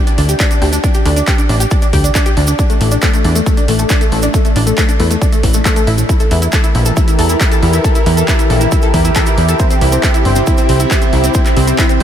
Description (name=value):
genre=uplifting trance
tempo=137 BPM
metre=4/4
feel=straight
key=unclear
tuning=A4 = 439 Hz
part: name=analog pluck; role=arpeggios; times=0.0-12.0 s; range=A2 to A4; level=-17 LUFS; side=left 1 dB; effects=lush chorus, sidechain pumping, analog delay
part: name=punchy analog drum machine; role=drums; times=0.1-12.0 s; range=handclaps, hi-hat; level=-20 LUFS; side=equal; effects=overdrive, sidechain pumping on hats, sidechain pumping on cymbals
part: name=cabasa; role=percussion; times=0.1-12.0 s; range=none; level=-26 LUFS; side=right 5 dB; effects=none
part: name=plucky analog bass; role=bass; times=0.2-12.0 s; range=G1 to E2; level=-13 LUFS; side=equal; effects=tube saturation, sidechain pumping
part: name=electronic kick drum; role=drums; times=0.4-11.9 s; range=none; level=-13 LUFS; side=equal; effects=none
part: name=lush unison pad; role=sustained chords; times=6.4-12.0 s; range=C3 to Bb4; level=-16 LUFS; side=equal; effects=chorus, phaser, sidechain pumping
room=moderate huge ambient reverb, RT60 8.5 s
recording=dreamy mix soaked in reverb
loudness=-10 LUFS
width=side -10 dB against mid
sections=0.0-12.0 A section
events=none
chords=0.0 D5; 2.6 A5; 6.1 Edim; 9.6 C